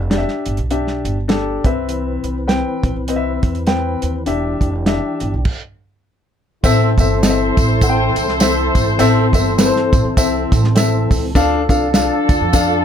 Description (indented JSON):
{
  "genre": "uptempo 1960s-style soul",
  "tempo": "102 BPM",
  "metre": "4/4",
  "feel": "swing 58% on 8ths",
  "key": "A minor",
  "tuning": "A4 = 439 Hz",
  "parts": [
    { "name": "upright bass", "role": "bass", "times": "0.0-12.8 s", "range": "E1 to F2", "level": "-20 LUFS", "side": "right 1 dB", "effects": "none" },
    { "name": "warm grand piano", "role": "accompaniment", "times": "0.1-12.8 s", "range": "C4 to G5", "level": "-18 LUFS", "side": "left 4 dB", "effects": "none" },
    { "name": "warm soul drum kit", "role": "drums", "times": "0.1-12.7 s", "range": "crash cymbal, hi-hat, kick drum, snare drum", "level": "-17 LUFS", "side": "right 1 dB", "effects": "none" },
    { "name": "mellow tonewheel organ", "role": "sustained chords", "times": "1.9-12.8 s", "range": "E3 to B4", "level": "-25 LUFS", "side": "equal", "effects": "chorus vibrato, stopped rotary speaker" },
    { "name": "warm horn section", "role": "second line", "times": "6.6-12.8 s", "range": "D4 to C5", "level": "-21 LUFS", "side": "equal", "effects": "none" },
    { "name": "tambourine", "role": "percussion", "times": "6.6-12.7 s", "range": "none", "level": "-26 LUFS", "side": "right 3 dB", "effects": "none" }
  ],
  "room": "light reverb",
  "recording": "none",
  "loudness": "-14 LUFS",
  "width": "side -8 dB against mid",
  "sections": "0.0-6.6 A section; 6.6-12.8 B section",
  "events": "stop 5.5-6.6",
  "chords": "0.0 Em7; 1.6 Cmaj7; 4.3 Em7; 6.6 Am; 11.4 Dm",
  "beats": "0.12 0.71 1.30 | 1.90 2.49 3.08 3.67 | 4.27 4.86 5.45 6.04 | 6.63 7.22 7.81 8.40 | 8.99 9.59 10.18 10.77 | 11.36 11.95 12.54"
}